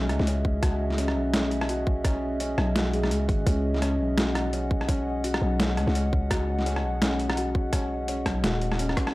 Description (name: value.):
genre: half-time drum and bass.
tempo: 169 BPM.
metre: 4/4.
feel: swing 57% on 16ths, half-time.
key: unclear.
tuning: A4 = 439 Hz.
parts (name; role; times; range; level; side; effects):
dark analog pad; sustained chords; 0.0-9.1 s; C#4 to F#5; -31 LUFS; equal; chorus, sidechain pumping.
felt-muted upright piano; arpeggios; 0.0-9.1 s; G#3 to F#4; -32 LUFS; equal; tape echo.
growling 808-style bass; bass; 0.0-9.0 s; D#1 to C#2; -28 LUFS; equal; none.
boom bap sampler-style drum kit; drums; 0.1-9.1 s; hi-hat, rim click, snare drum; -29 LUFS; equal; overdrive.
electronic kick drum; drums; 0.4-9.1 s; none; -26 LUFS; equal; overdrive.
room: little or no reverb.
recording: dry, gritty hardware recording, transformer saturation.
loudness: -23 LUFS.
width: side -19 dB against mid.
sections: 0.0-9.1 A section.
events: drop 0.0-9.1; drum fill 8.9.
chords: 0.0 C#madd9.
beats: 0.27 | 0.63 0.98 1.34 1.69 | 2.05 2.40 2.76 3.11 | 3.47 3.82 4.18 4.53 | 4.89 5.24 5.60 5.95 | 6.31 6.66 7.02 7.37 | 7.73 8.08 8.44 8.79.